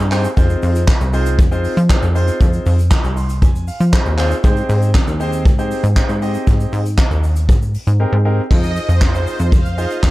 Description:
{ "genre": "dance-pop", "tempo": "118 BPM", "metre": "4/4", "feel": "straight", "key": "unclear", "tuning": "A4 = 440 Hz", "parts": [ { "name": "plucky analog bass", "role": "bass", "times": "0.0-10.1 s", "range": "C2 to F3", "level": "-16 LUFS", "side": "equal", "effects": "sidechain pumping" }, { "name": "warm concert grand piano", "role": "accompaniment", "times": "0.1-10.1 s", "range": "C4 to C6", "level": "-23 LUFS", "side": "equal", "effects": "none" }, { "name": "vintage brush drum kit", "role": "drums", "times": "0.1-10.1 s", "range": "crash cymbal, handclaps, hi-hat, kick drum, shaker, snare drum", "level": "-16 LUFS", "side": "equal", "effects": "none" }, { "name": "supersaw pad", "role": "melody", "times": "8.5-9.9 s", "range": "C5 to F5", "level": "-25 LUFS", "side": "right 2 dB", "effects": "ping-pong delay" } ], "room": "studio reverb", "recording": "dark, warm production", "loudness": "-13 LUFS", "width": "side -18 dB against mid", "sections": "0.0-8.5 A section; 8.5-10.1 B section", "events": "grand piano fill 2.9-4.4; silent gap 8.0-8.5", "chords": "0.4 Fm7; 4.4 Abmaj7; 8.5 Fm7" }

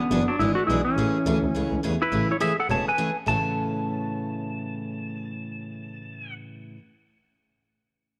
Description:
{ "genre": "country", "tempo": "209 BPM", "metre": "4/4", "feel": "swing 60% on 8ths", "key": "A major", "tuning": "A4 = 439 Hz", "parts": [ { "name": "clean lap steel guitar", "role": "melody", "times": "0.0-6.3 s", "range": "D3 to A5", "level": "-28 LUFS", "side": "equal", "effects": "none" }, { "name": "picked steel-string acoustic guitar", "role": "accompaniment", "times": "0.0-6.8 s", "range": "A2 to G#4", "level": "-32 LUFS", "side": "equal", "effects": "none" }, { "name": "muted double bass", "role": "bass", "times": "0.1-3.4 s", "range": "E1 to E2", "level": "-30 LUFS", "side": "equal", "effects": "none" } ], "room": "moderate plate reverb, RT60 2.9 s", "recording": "none", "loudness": "-25 LUFS", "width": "mono", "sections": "0.0-2.1 A section; 2.1-3.3 B section; 3.3-5.6 C section", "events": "none", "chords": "0.0 E7; 1.0 Amaj7; 3.3 A" }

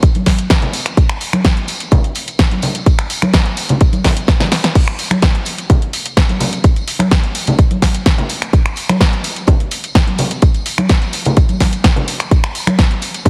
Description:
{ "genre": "house", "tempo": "127 BPM", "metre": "4/4", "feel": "straight", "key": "none", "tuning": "none", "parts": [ { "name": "electronic kick drum", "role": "drums", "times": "0.0-13.3 s", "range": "none", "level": "-14 LUFS", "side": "equal", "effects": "studio reverb" }, { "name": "house drum kit", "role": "drums", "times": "0.0-13.3 s", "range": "crash cymbal, finger snaps, hi-hat, snare drum", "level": "-20 LUFS", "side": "equal", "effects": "sidechain pumping on hats, studio reverb, sidechain pumping on cymbals" }, { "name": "tambourine and congas", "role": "percussion", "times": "0.0-13.3 s", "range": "none", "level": "-22 LUFS", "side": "equal", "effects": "sidechain pumping on perc, low-pass filter on perc" } ], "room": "light reverb", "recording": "heavily compressed radio sound", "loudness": "-14 LUFS", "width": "mono", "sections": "0.0-13.3 A section", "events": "drum fill 4.0-4.8", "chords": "none" }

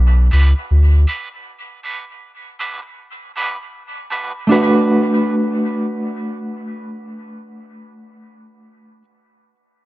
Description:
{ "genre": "reggae", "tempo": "79 BPM", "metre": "4/4", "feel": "swing 61% on 16ths", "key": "B minor", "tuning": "A4 = 440 Hz", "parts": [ { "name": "soft dub sub bass", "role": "bass", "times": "0.0-1.1 s", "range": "B1 to D2", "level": "-10 LUFS", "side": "equal", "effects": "none" }, { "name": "mellow electric guitar", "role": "accompaniment", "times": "0.3-9.0 s", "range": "A3 to B4", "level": "-19 LUFS", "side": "right 1 dB", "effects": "tremolo, high-pass filter, dub echo" } ], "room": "light reverb", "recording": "none", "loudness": "-15 LUFS", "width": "side -17 dB against mid", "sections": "0.0-4.5 A section; 4.5-7.5 B section", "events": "none", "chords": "0.0 Bm7" }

